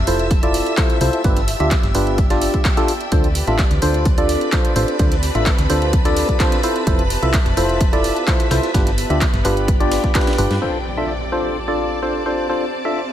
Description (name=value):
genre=piano house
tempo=128 BPM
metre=4/4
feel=straight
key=D dorian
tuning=A4 = 440 Hz
part: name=string machine, violins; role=sustained chords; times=0.0-13.1 s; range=B4 to E6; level=-28 LUFS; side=equal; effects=ensemble chorus, sidechain pumping
part: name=solid FM bass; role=bass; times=0.0-10.6 s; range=F1 to G2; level=-21 LUFS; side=equal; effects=sidechain pumping
part: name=warm studio string section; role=texture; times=0.0-13.1 s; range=B3 to A5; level=-28 LUFS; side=right 1 dB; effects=sidechain pumping
part: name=percussive organ stab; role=riff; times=0.1-13.0 s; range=D4 to E5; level=-20 LUFS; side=equal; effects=chorus, sidechain pumping, tape echo
part: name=breakbeat sampler-style drum kit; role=drums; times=0.1-13.1 s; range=hi-hat, snare drum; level=-35 LUFS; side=equal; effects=none
part: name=house drum kit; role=drums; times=0.1-10.7 s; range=crash cymbal, handclaps, hi-hat, snare drum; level=-26 LUFS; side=equal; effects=overdrive, low-pass filter on hats, low-pass filter on snare, low-pass filter on cymbals, low-pass filter on room
part: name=electronic kick drum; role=drums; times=0.3-10.2 s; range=none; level=-18 LUFS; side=equal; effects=overdrive
part: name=impact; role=sound effects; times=10.6-12.5 s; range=none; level=-30 LUFS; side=equal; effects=none
room=light reverb, digital ambience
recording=none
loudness=-15 LUFS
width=side -11 dB against mid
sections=0.0-10.6 A section; 10.6-13.1 B section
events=drum fill 10.2-10.6; band accent 10.5; impact 10.6-12.5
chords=0.0 Fmaj7; 1.2 G7; 3.1 Dm7; 6.6 Fmaj7; 8.7 G7; 10.6 Dm7